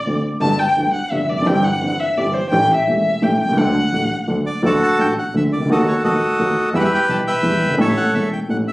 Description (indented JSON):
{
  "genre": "tango",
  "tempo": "171 BPM",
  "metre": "3/4",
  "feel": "rubato",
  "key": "D major from 4.6 s",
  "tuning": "A4 = 440 Hz",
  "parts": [
    { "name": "warm violin", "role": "second line", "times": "0.0-4.3 s", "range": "C5 to A5", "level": "-18 LUFS", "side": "left 1 dB", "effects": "none" },
    { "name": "dark upright piano", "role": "accompaniment", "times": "0.1-8.6 s", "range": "E1 to A4", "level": "-19 LUFS", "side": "equal", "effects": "none" },
    { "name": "warm double bass", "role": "bass", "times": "0.1-8.6 s", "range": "E1 to E2", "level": "-24 LUFS", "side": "equal", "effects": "none" },
    { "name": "bandoneon", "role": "melody", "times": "4.5-8.7 s", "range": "F#4 to A5", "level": "-18 LUFS", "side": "equal", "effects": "none" }
  ],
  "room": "wet studio reverb, RT60 0.8 s",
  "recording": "recorded on a phone in the room, club reverb",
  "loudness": "-15 LUFS",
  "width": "side -19 dB against mid",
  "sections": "0.0-4.6 A section; 4.6-8.7 B section",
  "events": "violin solo 0.0-4.6",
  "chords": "0.4 Gmaj7; 1.5 C/G; 2.5 A7; 3.6 D; 5.7 B7/D#; 6.7 Em; 7.8 A"
}